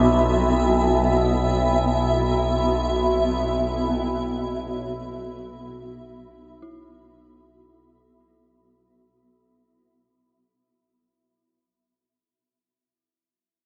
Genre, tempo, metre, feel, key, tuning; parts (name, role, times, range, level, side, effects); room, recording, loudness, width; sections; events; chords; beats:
dark ambient drone; free time; A4 = 441 Hz
granular cloud pad; sustained chords; 0.0-8.5 s; B3 to B5; -24 LUFS; equal; built-in reverb
dark detuned synth bell; arpeggios; 0.0-12.9 s; E4; -56 LUFS; equal
overtone-sweeping drone; drone; 0.0-8.6 s; B1; -27 LUFS; equal; chorus, built-in reverb
wind-like tuned noise texture; texture; 0.2-8.5 s; A4; -42 LUFS; equal
wet huge ambient reverb, RT60 7.7 s; nothing above 7.6 kHz; -22 LUFS; mono
0.0-8.5 A section
fade-out 0.0-8.5
0.0 B5
free time